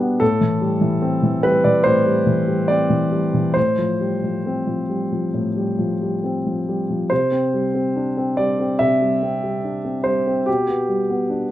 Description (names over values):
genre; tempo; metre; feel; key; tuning
neoclassical minimalist piano; 70 BPM; 4/4; uneven beats, rubato; C major; A4 = 441 Hz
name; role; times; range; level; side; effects
warm concert grand piano; solo; 0.0-11.5 s; A2 to E5; -17 LUFS; equal; none
room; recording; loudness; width
wet small room reverb, RT60 0.5 s; rough home demo mix; -17 LUFS; side -13 dB against mid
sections
0.0-11.5 A section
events
none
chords
0.2 Am7; 3.6 Fadd9/A; 7.1 Cadd9; 10.5 G/B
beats
| 0.21 1.02 1.85 2.69 | 3.56 4.45 5.34 6.22 | 7.10 7.96 8.81 9.64 | 10.47 11.29